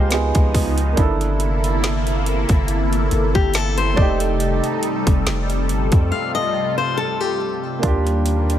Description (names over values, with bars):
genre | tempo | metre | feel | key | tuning
contemporary R&B | 70 BPM | 4/4 | swing 54% on 16ths | unclear | A4 = 439 Hz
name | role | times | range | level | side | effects
warm concert grand piano | accompaniment | 0.0-8.6 s | A3 to G5 | -25 LUFS | right 4 dB | none
lush unison pad | sustained chords | 0.0-8.6 s | C3 to A4 | -24 LUFS | equal | chorus, phaser
fingerpicked steel-string acoustic guitar | arpeggios | 0.0-7.8 s | G4 to F5 | -23 LUFS | left 7 dB | digital delay
long sustained 808-style bass | bass | 0.0-8.6 s | F1 to F2 | -20 LUFS | equal | none
trap drum kit | drums | 0.1-8.6 s | hi-hat, kick drum, snare drum | -20 LUFS | equal | none
room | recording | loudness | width
little or no reverb | none | -16 LUFS | side -11 dB against mid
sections
0.0-7.8 A section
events
break 6.1-7.8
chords
0.1 Db9; 1.0 C13/G; 4.0 F13; 7.8 Ebmaj7